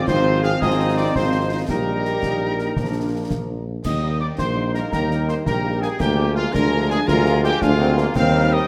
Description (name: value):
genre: military-style march for wind band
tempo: 111 BPM (dotted quarters)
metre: 6/8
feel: straight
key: Eb major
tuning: A4 = 440 Hz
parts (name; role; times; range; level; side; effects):
- dark trumpet section; melody; 0.0-8.7 s; F4 to F5; -29 LUFS; equal; none
- warm euphonium; second line; 0.0-8.7 s; Bb3 to G4; -28 LUFS; equal; none
- wooden piccolo; second line; 0.0-8.7 s; F5 to F6; -30 LUFS; equal; none
- warm French horn section; accompaniment; 0.0-8.6 s; F3 to F4; -32 LUFS; equal; none
- mellow trombone section; sustained chords; 0.0-8.7 s; Eb3 to Eb4; -31 LUFS; equal; none
- clear woodwind section; second line; 0.1-8.7 s; Eb4 to Ab5; -34 LUFS; equal; none
- mellow tuba; bass; 0.1-8.6 s; Ab1 to Eb2; -24 LUFS; equal; none
- concert snare drum, concert bass drum and clash cymbals; drums; 0.1-8.3 s; none; -31 LUFS; equal; none
room: wet recital hall reverb, RT60 1.4 s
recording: none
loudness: -20 LUFS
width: mono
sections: 0.0-3.8 A section; 3.8-8.7 B section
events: none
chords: 0.0 Fm7/Ab; 1.7 Eb/Bb; 2.8 Bb; 3.8 Eb; 6.0 Bb7/D; 8.2 Eb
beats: 0.08 | 0.61 1.15 | 1.69 2.23 | 2.77 3.31 | 3.85 4.38 | 4.92 5.46 | 6.00 6.54 | 7.08 7.62 | 8.16